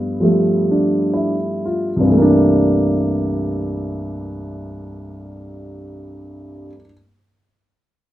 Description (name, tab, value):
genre	solo jazz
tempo	62 BPM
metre	4/4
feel	swing 68% on 8ths, rubato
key	C mixolydian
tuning	A4 = 440 Hz
part	dark baby grand piano	solo	0.0-6.9 s	C2 to F4	-17 LUFS	equal	none
room	moderate studio reverb, RT60 0.6 s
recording	minimal, uncompressed stereo recording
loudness	-15 LUFS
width	side -14 dB against mid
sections	0.0-2.1 A section; 2.1-5.9 B section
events	slowing down 0.0-2.1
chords	0.0 G9; 2.1 C13